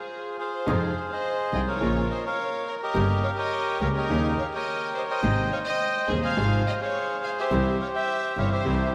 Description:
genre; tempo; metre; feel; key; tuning
tango; 105 BPM; 4/4; rubato; F minor; A4 = 439 Hz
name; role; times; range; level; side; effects
bandoneon; melody; 0.0-8.9 s; F4 to Ab5; -30 LUFS; equal; diffuse ambient delay
rich studio violin section; second line; 0.0-8.9 s; Ab4 to F5; -35 LUFS; equal; none
warm concert grand piano; accompaniment; 0.7-8.9 s; Eb1 to G4; -32 LUFS; equal; ensemble chorus
bandoneon; stabs; 0.7-8.9 s; C4 to Bb4; -42 LUFS; equal; none
clear double bass; bass; 0.7-8.9 s; G1 to F2; -30 LUFS; equal; none
room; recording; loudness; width
wet lush hall reverb, RT60 2.5 s; dreamy mix soaked in reverb; -26 LUFS; mono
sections
0.7-8.9 A section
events
stop 0.0-0.7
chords
0.0 Fm; 0.7 Fm7; 1.8 Bbm; 3.0 Gdim; 4.1 Eb7; 5.2 Ab; 6.4 Fm/Ab; 7.5 C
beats
0.10 | 0.67 1.25 1.82 2.39 | 2.96 3.53 4.10 4.67 | 5.24 5.80 6.37 6.94 | 7.51 8.09 8.66

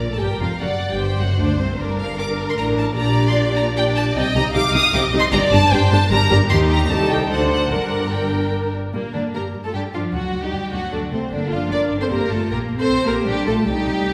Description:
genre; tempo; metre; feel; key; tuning
quick classical-period movement for string orchestra; 152 BPM; 3/4; rubato; G minor; A4 = 440 Hz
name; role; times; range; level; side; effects
rich studio violin section; second line; 0.0-14.1 s; Bb3 to F5; -27 LUFS; equal; none
warm studio cello section; bass; 0.0-14.1 s; C2 to D4; -26 LUFS; equal; none
warm studio double bass section; bass; 0.0-14.1 s; F1 to G2; -25 LUFS; equal; none
rich studio violin section; melody; 0.1-14.1 s; Bb4 to Eb6; -26 LUFS; equal; none
warm studio viola section; accompaniment; 0.1-14.1 s; G3 to C5; -26 LUFS; equal; none
room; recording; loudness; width
wet scoring stage reverb, RT60 1.5 s; recorded in a church or concert hall; -19 LUFS; mono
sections
0.0-8.9 A section; 8.9-14.1 A section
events
none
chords
0.0 Gm/Bb; 0.6 D7; 1.8 Gm; 3.0 Gm/Bb; 4.1 Cm; 5.3 Gm; 6.5 Eb; 6.9 Am7b5/C; 7.3 D7; 7.7 Gm; 10.1 D7; 11.3 Gm; 12.5 Gm/Bb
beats
0.21 | 0.61 1.00 1.40 | 1.79 2.19 2.58 | 2.97 3.36 3.76 | 4.15 4.54 4.93 | 5.32 5.71 6.11 | 6.50 6.90 7.30 | 7.71 8.12 8.53 | 8.94 9.35 9.74 | 10.14 10.53 10.93 | 11.32 11.72 12.11 | 12.50 12.89 13.27 | 13.66 14.05

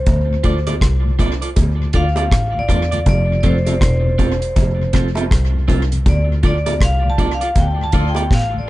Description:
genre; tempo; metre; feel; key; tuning
roots reggae; 80 BPM; 4/4; swing 61% on 16ths; D minor; A4 = 440 Hz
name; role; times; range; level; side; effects
vibraphone with hard mallets; melody; 0.0-8.7 s; C5 to A5; -23 LUFS; left 1 dB; tape echo
clear double bass; bass; 0.0-8.6 s; E1 to E2; -18 LUFS; equal; none
deep reggae drum kit; drums; 0.1-8.5 s; hi-hat, kick drum, rim click, snare drum; -17 LUFS; equal; none
bongos; percussion; 0.1-8.3 s; none; -28 LUFS; right 3 dB; none
mellow tonewheel organ; accompaniment; 0.3-8.6 s; D2 to D4; -26 LUFS; left 3 dB; chorus vibrato, slow rotary speaker
electric guitar at the edge of break-up; accompaniment; 0.4-8.2 s; C4 to D5; -26 LUFS; right 4 dB; tape echo
mellow horn section; second line; 7.9-8.1 s; D4 to A4; -28 LUFS; left 2 dB; tape echo
room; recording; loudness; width
little or no reverb; echo-heavy mix, nothing above 10.9 kHz; -14 LUFS; side -17 dB against mid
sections
0.0-8.7 A section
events
vibraphone solo 0.0-8.7; band accent 6.1-8.7; drum fill 8.3-8.7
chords
0.1 Dm; 3.1 F; 6.1 Dm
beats
| 0.07 0.82 1.57 2.32 | 3.07 3.81 4.56 5.31 | 6.06 6.81 7.56 8.31

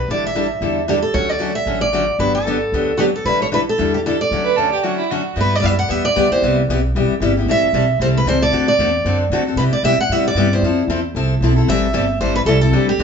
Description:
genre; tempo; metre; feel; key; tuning
acoustic string swing (jazz manouche); 228 BPM; 4/4; swing 56% on 8ths; D major, G major from 5.4 s; A4 = 441 Hz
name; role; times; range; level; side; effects
picked steel-string acoustic guitar; melody; 0.0-13.0 s; F#4 to F#5; -18 LUFS; right 2 dB; none
upright bass; bass; 0.0-13.0 s; E1 to C3; -21 LUFS; right 1 dB; none
picked steel-string acoustic guitar; accompaniment; 0.1-13.0 s; C3 to A4; -19 LUFS; left 3 dB; none
warm violin; second line; 4.4-5.4 s; E4 to B4; -19 LUFS; right 8 dB; none
room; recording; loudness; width
wet studio reverb, RT60 0.7 s; band playing live in one room, nothing above 7.7 kHz; -15 LUFS; side -6 dB against mid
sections
0.0-5.4 A section; 5.4-13.0 B section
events
break 4.8-5.4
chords
0.1 A7sus4; 1.1 Dmaj7; 2.2 Gmaj7; 3.3 A7sus4; 4.3 Dmaj7; 5.4 G6; 6.4 Cmaj7; 7.5 Am7; 8.5 D7; 9.6 Cmaj7; 10.6 Fmaj7; 11.7 Am7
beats
| 0.09 0.35 0.61 0.88 | 1.14 1.40 1.67 1.93 | 2.19 2.46 2.72 2.99 | 3.25 3.52 3.78 4.04 | 4.31 4.57 4.83 5.10 | 5.36 5.63 5.89 6.15 | 6.42 6.68 6.94 7.21 | 7.47 7.73 8.00 8.26 | 8.52 8.78 9.05 9.31 | 9.57 9.84 10.10 10.36 | 10.62 10.89 11.15 11.41 | 11.67 11.94 12.20 12.46 | 12.73 12.99

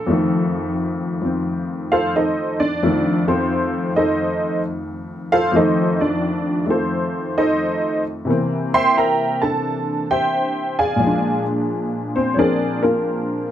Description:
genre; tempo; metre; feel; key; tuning
solo jazz; 88 BPM; 4/4; swing 67% on 8ths; F mixolydian; A4 = 440 Hz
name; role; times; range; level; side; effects
honky-tonk upright piano; solo; 0.0-13.5 s; F2 to C6; -17 LUFS; equal; none
room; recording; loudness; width
moderate studio reverb, RT60 0.5 s; none; -17 LUFS; side -11 dB against mid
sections
0.0-13.5 A section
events
honky-tonk piano solo 0.0-13.5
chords
0.1 F7; 8.3 C7; 11.0 Bb7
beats
| 0.07 0.76 1.44 2.12 | 2.80 3.48 4.17 4.85 | 5.53 6.21 6.90 7.58 | 8.26 8.95 9.63 10.31 | 10.99 11.67 12.36 13.04

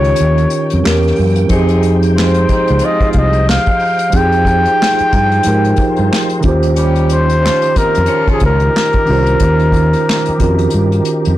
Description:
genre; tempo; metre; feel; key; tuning
R&B, neo-soul; 91 BPM; 4/4; swing 60% on 16ths; unclear; A4 = 441 Hz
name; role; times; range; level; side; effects
breathy flugelhorn; melody; 0.0-11.4 s; Ab4 to G5; -15 LUFS; left 2 dB; plate reverb
mellow tine electric piano; accompaniment; 0.0-11.4 s; Eb3 to Db5; -16 LUFS; right 3 dB; medium stereo tremolo, plate reverb
bright tonewheel organ; sustained chords; 0.0-11.4 s; E3 to G5; -24 LUFS; right 1 dB; slow rotary speaker, chorus vibrato, plate reverb
fingered electric bass; bass; 0.0-11.4 s; C2 to Ab2; -14 LUFS; equal; tube saturation
unplugged drum kit; drums; 0.0-11.4 s; handclaps, hi-hat, kick drum, snare drum; -18 LUFS; equal; none
warm horn section; stabs; 1.5-8.7 s; F3 to Ab4; -22 LUFS; left 2 dB; plate reverb
room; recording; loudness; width
light reverb; blown-out, overdriven recording, overdrive; -10 LUFS; side -14 dB against mid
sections
0.0-11.4 A section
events
none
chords
0.0 Eb13; 0.8 Edim7; 1.5 Fm9; 6.4 Eb13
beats
0.18 0.84 | 1.50 2.16 2.81 3.47 | 4.13 4.79 5.45 6.11 | 6.77 7.43 8.09 8.75 | 9.41 10.07 10.73

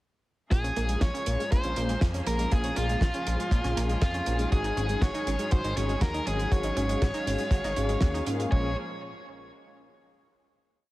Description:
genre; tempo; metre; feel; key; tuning
italo disco; 120 BPM; 4/4; straight; Bb minor; A4 = 440 Hz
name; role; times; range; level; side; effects
smooth overdriven lead guitar; melody; 0.5-8.8 s; F4 to Db5; -32 LUFS; equal; digital delay
rich studio string section; sustained chords; 0.5-8.8 s; F3 to F5; -37 LUFS; left 1 dB; none
analog pluck; arpeggios; 0.5-8.8 s; Ab3 to Gb4; -36 LUFS; right 3 dB; chorus, tape echo
fat analog bass; bass; 0.5-8.8 s; Ab1 to Ab2; -30 LUFS; equal; none
damped 70s drum kit; drums; 0.5-8.5 s; hi-hat, snare drum; -36 LUFS; right 1 dB; studio ambience
kick drum; drums; 0.5-8.6 s; none; -25 LUFS; equal; studio ambience
mellow synth brass; stabs; 0.8-8.7 s; Bb3 to Ab4; -36 LUFS; left 3 dB; chorus, cassette tape
room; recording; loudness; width
small room reverb; heavily compressed radio sound; -25 LUFS; side -18 dB against mid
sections
0.5-8.5 verse; 8.5-10.5 final chord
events
filter sweep on analog polysynth 0.5-8.5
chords
0.5 Bbm7; 4.5 Ab7sus4; 8.5 Bbm7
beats
| 0.52 1.02 1.52 2.02 | 2.52 3.02 3.52 4.02 | 4.52 5.02 5.52 6.02 | 6.52 7.02 7.52 8.02 | 8.52

